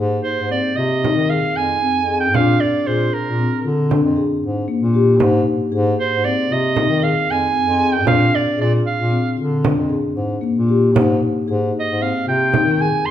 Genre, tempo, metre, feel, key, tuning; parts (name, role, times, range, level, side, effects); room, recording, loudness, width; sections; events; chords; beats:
contemporary instrumental, chamber music in an uneven meter; 230 BPM (eighths); 11/8; straight; A4 = 440 Hz
marimba with soft mallets; arpeggios; 0.0-13.1 s; Bb3 to Ab4; -19 LUFS; left 3 dB
warm bass clarinet; bass; 0.0-13.1 s; F2 to Eb3; -20 LUFS; equal
warm soprano saxophone; melody; 0.2-13.1 s; Bb4 to C6; -19 LUFS; right 4 dB
frame drum; percussion; 0.5-12.8 s; -23 LUFS; right 5 dB
wet recital hall reverb, RT60 1.4 s; minimal, uncompressed stereo recording; -15 LUFS; side -11 dB against mid
0.0-13.1 A section
0.0 Ab6; 2.3 Bb7; 5.2 Ab6; 8.1 Bb7; 11.0 Ab
0.24 0.50 0.77 1.03 1.30 1.56 1.82 2.09 | 2.35 2.61 2.87 3.13 3.39 3.65 3.91 4.17 4.43 4.68 4.94 | 5.20 5.46 5.72 5.98 6.24 6.50 6.76 7.02 7.28 7.54 7.80 | 8.06 8.32 8.58 8.84 9.10 9.37 9.63 9.89 10.16 10.42 10.69 | 10.95 11.22 11.48 11.75 12.01 12.28 12.54 12.80 13.06